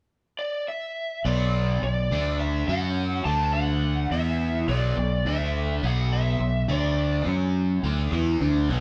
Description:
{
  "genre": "rock",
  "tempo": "105 BPM",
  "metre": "4/4",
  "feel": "straight",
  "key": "B minor",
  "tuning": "A4 = 439 Hz",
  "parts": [
    { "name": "lead guitar through a small cranked amp", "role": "melody", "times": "0.4-7.2 s", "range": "D5 to A5", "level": "-32 LUFS", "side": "equal", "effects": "overdrive" },
    { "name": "growling fingered electric bass", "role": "bass", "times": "1.2-8.8 s", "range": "B1 to F#2", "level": "-27 LUFS", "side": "equal", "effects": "overdrive" },
    { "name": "overdriven semi-hollow guitar", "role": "riff", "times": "1.3-8.8 s", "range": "B2 to F#4", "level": "-30 LUFS", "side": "equal", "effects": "phaser" }
  ],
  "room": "moderate stone room reverb, RT60 1.1 s",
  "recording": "band playing live in one room",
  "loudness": "-25 LUFS",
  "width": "mono",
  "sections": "0.0-1.2 A section; 1.2-8.8 B section",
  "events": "none",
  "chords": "0.0 N.C.; 1.2 Bm; 2.1 D5; 2.7 F#5; 3.3 D5; 4.1 E5; 4.7 Bm; 5.3 D5; 5.8 B5; 6.7 D5; 7.3 F#5; 7.8 Bm",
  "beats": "0.10 0.67 | 1.25 1.82 2.39 2.97 | 3.54 4.11 4.68 5.26 | 5.83 6.40 6.97 7.54 | 8.12 8.69"
}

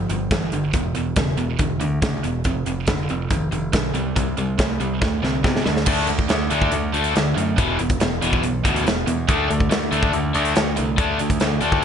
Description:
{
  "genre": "classic rock",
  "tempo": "141 BPM",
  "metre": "4/4",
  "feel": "straight",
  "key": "unclear",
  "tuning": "A4 = 439 Hz",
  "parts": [
    { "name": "crunchy overdriven guitar", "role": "riff", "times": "0.0-11.8 s", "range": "E2 to D4", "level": "-25 LUFS", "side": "left 11 dB", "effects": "none" },
    { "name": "tight distorted guitar", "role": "riff", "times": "0.0-11.8 s", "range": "E2 to D4", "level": "-25 LUFS", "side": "right 10 dB", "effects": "distortion" },
    { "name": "modern bright picked electric bass", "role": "bass", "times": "0.0-11.8 s", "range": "E1 to C3", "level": "-25 LUFS", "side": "equal", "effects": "none" },
    { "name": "big rock drum kit", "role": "drums", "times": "0.1-11.8 s", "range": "crash cymbal, hi-hat, kick drum, snare drum", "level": "-22 LUFS", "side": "equal", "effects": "none" }
  ],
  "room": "light reverb",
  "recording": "nothing above 11.0 kHz",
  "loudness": "-18 LUFS",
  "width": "side -8 dB against mid",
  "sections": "0.0-5.9 A section; 5.9-11.8 B section",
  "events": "drum fill 5.0-5.9",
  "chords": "0.0 G5; 0.7 E5; 2.5 F5; 4.0 C5; 5.0 D5; 7.6 E5; 9.3 D5",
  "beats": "0.32 | 0.75 1.17 1.60 2.03 | 2.45 2.88 3.31 3.74 | 4.16 4.59 5.02 5.45 | 5.87 6.30 6.73 7.16 | 7.58 8.01 8.44 8.86 | 9.29 9.71 10.14 10.56 | 10.99 11.41 11.84"
}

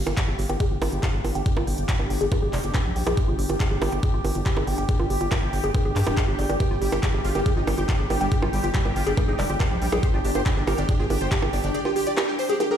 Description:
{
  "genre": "psychedelic trance",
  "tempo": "140 BPM",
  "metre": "4/4",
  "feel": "straight",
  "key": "unclear",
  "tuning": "A4 = 440 Hz",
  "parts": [
    { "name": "bubbling stepped-filter texture", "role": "sustained chords", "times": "0.0-12.8 s", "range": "G4", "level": "-33 LUFS", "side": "equal", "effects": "chorus, built-in reverb, sidechain pumping" },
    { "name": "woody wave-folded pluck", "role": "riff", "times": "0.0-12.8 s", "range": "F4 to G5", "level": "-30 LUFS", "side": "moving between left 4 dB and right 4 dB", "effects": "chorus, auto-pan, sidechain pumping, digital delay" },
    { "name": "round analog bass", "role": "bass", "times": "0.0-11.7 s", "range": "D1 to G2", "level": "-26 LUFS", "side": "equal", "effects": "none" },
    { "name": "ethereal airy pad", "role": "texture", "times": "0.0-12.8 s", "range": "D4 to G5", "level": "-32 LUFS", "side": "left 1 dB", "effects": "ensemble chorus, built-in reverb, tremolo, sidechain pumping" },
    { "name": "drum and bass drum kit", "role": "drums", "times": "0.1-12.7 s", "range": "bongos, handclaps, hi-hat", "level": "-30 LUFS", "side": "right 3 dB", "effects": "none" },
    { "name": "electronic kick drum", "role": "drums", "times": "0.2-11.4 s", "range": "none", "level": "-23 LUFS", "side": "equal", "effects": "none" },
    { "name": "dense compressed supersaw", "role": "melody", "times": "6.6-12.8 s", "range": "G3 to D5", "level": "-30 LUFS", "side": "right 2 dB", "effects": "phaser, vintage 12-bit sampler grit, sidechain pumping, tape echo" }
  ],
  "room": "light reverb",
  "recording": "played on a big sound system in a bare room, stone room reverb",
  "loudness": "-21 LUFS",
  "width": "side -9 dB against mid",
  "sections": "0.0-12.8 A section",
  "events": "filter sweep on synth arpeggio sound 0.0-12.8",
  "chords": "0.0 G5",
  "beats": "0.17 0.60 1.03 | 1.46 1.89 2.32 2.75 | 3.17 3.60 4.03 4.46 | 4.89 5.32 5.75 6.17 | 6.60 7.03 7.46 7.89 | 8.32 8.74 9.17 9.60 | 10.03 10.46 10.89 11.32 | 11.74 12.17 12.60"
}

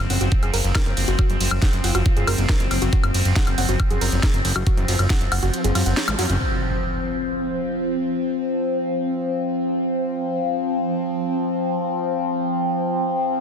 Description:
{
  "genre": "psychedelic trance",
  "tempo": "138 BPM",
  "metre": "4/4",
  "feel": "straight",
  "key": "unclear",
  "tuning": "A4 = 440 Hz",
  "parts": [
    { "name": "overtone-sweeping drone", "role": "sustained chords", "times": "0.0-13.4 s", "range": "F3 to C4", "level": "-23 LUFS", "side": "left 1 dB", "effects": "chorus, built-in reverb, phaser, sidechain pumping" },
    { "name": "fat analog bass", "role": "bass", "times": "0.0-6.4 s", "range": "Gb1 to Gb2", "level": "-21 LUFS", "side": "equal", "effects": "none" },
    { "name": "formant-sweep wobble bass", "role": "second line", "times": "0.1-6.0 s", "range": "F3 to F4", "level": "-36 LUFS", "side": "left 4 dB", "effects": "none" },
    { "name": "woody wave-folded pluck", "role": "riff", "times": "0.1-6.4 s", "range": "F4 to Gb5", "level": "-30 LUFS", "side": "moving between left 7 dB and right 5 dB", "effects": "chorus, auto-pan, vintage 12-bit sampler grit, sidechain pumping, digital delay" },
    { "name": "drum and bass drum kit", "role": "drums", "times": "0.1-6.4 s", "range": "hi-hat, ride cymbal, snare drum, woodblock", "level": "-26 LUFS", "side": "equal", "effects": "overdrive" },
    { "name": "electronic kick drum", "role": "drums", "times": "0.3-5.2 s", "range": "none", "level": "-19 LUFS", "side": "equal", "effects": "overdrive" },
    { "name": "zap and impact", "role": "sound effects", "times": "6.1-8.1 s", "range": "none", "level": "-28 LUFS", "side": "equal", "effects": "none" }
  ],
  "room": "light reverb",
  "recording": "dense, heavily limited modern master",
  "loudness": "-19 LUFS",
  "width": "side -7 dB against mid",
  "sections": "0.0-6.4 A section; 6.4-13.4 B section",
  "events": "drop 0.0-6.4; kick drops out 5.5-6.4; band accent 6.0; impact 6.4-8.1; filter sweep on synth drone 6.4-13.4",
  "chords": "0.0 Gb5; 6.4 F5",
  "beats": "0.32 0.75 | 1.19 1.62 2.06 2.49 | 2.93 3.36 3.80 4.23 | 4.67 5.10 5.54 5.97 | 6.41 6.84 7.27 7.71 | 8.14 8.58 9.01 9.45 | 9.88 10.32 10.75 11.19 | 11.62 12.06 12.49 12.93 | 13.36"
}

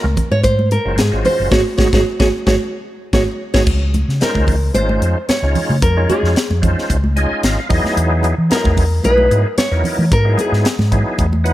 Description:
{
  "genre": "electric jazz fusion",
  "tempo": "112 BPM",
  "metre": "4/4",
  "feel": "swing 54% on 16ths",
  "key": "Ab mixolydian",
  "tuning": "A4 = 440 Hz",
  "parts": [
    { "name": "nylon-string guitar", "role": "melody", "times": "0.0-10.9 s", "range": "Gb4 to Db5", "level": "-18 LUFS", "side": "equal", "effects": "slapback echo" },
    { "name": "bright tonewheel organ", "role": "accompaniment", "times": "0.0-11.5 s", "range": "F#3 to Ab5", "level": "-22 LUFS", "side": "equal", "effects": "chorus vibrato, fast rotary speaker" },
    { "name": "fingered electric bass", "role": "bass", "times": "0.0-11.5 s", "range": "Gb1 to E3", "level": "-16 LUFS", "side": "equal", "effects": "none" },
    { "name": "congas", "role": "percussion", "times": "0.0-11.4 s", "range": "none", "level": "-24 LUFS", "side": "right 1 dB", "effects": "none" },
    { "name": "crisp fusion drum kit", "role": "drums", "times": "0.2-11.5 s", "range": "crash cymbal, hi-hat, kick drum, snare drum", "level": "-19 LUFS", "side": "equal", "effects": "none" }
  ],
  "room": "light reverb",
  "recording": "none",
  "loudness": "-13 LUFS",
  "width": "side -14 dB against mid",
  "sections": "0.0-3.7 A section; 3.7-11.5 B section",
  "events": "band accent 1.5-3.7; tonewheel organ fill 6.9-8.0, 11.2-11.5",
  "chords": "0.0 Ab7sus4; 3.7 Dbmaj9; 7.7 Emaj9",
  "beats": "0.44 0.98 | 1.52 2.06 2.59 3.13 | 3.67 4.21 4.75 5.28 | 5.82 6.36 6.89 7.43 | 7.97 8.51 9.04 9.58 | 10.12 10.65 11.19"
}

